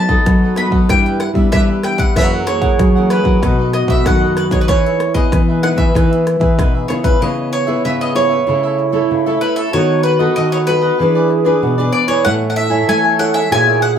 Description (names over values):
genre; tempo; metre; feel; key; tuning
samba and choro; 95 BPM; 4/4; straight; E major; A4 = 440 Hz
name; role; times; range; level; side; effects
bowl-back mandolin; melody; 0.0-13.9 s; A4 to B5; -18 LUFS; equal; slapback echo
dark trombone; second line; 0.0-14.0 s; B3 to A4; -20 LUFS; right 4 dB; none
nylon-string guitar; accompaniment; 0.0-14.0 s; F#2 to C#5; -22 LUFS; left 2 dB; none
nylon-string guitar; bass; 0.0-14.0 s; A2 to A3; -18 LUFS; left 1 dB; none
cavaquinho; accompaniment; 0.1-14.0 s; D4 to G#5; -24 LUFS; right 1 dB; none
big-room dance drum kit; drums; 0.1-7.2 s; hi-hat, kick drum, rim click; -16 LUFS; equal; none
room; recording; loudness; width
wet studio reverb, RT60 0.6 s; heard from further back in the room; -12 LUFS; side -8 dB against mid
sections
0.0-7.2 A section; 7.2-14.0 B section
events
none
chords
0.0 B7/F#; 0.9 G6; 2.2 F#7; 3.4 B7; 4.7 Emaj7; 7.2 C#m7; 8.5 A/C#; 9.7 B7/D#; 11.0 E7; 12.3 Amaj7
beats
0.27 0.90 1.53 | 2.16 2.79 3.43 4.06 | 4.69 5.32 5.95 6.58 | 7.21 7.84 8.47 9.11 | 9.74 10.37 11.00 11.63 | 12.26 12.89 13.52